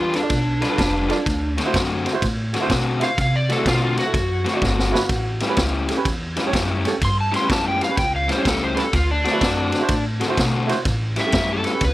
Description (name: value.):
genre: electric blues shuffle.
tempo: 125 BPM.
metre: 4/4.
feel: swing 65% on 8ths.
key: D mixolydian.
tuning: A4 = 440 Hz.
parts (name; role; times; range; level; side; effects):
overdriven slide guitar; melody; 0.0-11.9 s; D4 to C6; -24 LUFS; equal; none.
crunchy overdriven guitar; riff; 0.0-11.7 s; A2 to B4; -24 LUFS; left 4 dB; none.
upright bass; bass; 0.0-11.9 s; F1 to C3; -24 LUFS; equal; none.
clear upright piano; accompaniment; 0.1-11.8 s; C#4 to A5; -26 LUFS; right 4 dB; none.
vintage drum kit; drums; 0.1-11.9 s; kick drum, ride cymbal, snare drum; -24 LUFS; equal; none.
room: little or no reverb.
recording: none.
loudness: -18 LUFS.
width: side -16 dB against mid.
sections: 0.0-11.9 A section.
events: electric slide guitar solo 0.0-11.9; upright piano fill 0.5-1.3; drum fill 4.6-5.1.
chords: 0.0 G7; 1.3 D7; 5.1 A7; 8.9 D7; 10.9 A7.